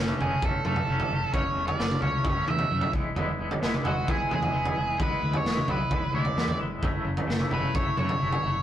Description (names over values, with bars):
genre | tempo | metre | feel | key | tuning
quiet-loud alternative rock | 131 BPM | 4/4 | straight | F# minor | A4 = 439 Hz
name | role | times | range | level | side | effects
twangy electric guitar | arpeggios | 0.0-8.6 s | F#2 to E4 | -32 LUFS | left 2 dB | tremolo
fingered electric bass | bass | 0.0-8.6 s | E1 to F#2 | -32 LUFS | equal | none
raw garage drum kit | drums | 0.1-8.4 s | kick drum, snare drum, toms | -28 LUFS | equal | none
octave-fuzz lead guitar | melody | 0.2-8.6 s | F#4 to E5 | -29 LUFS | right 2 dB | distortion
room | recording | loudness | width
light reverb | rough rehearsal-room recording | -24 LUFS | side -11 dB against mid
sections
0.0-8.6 A section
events
none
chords
0.0 F#m7; 2.9 E; 6.8 F#m7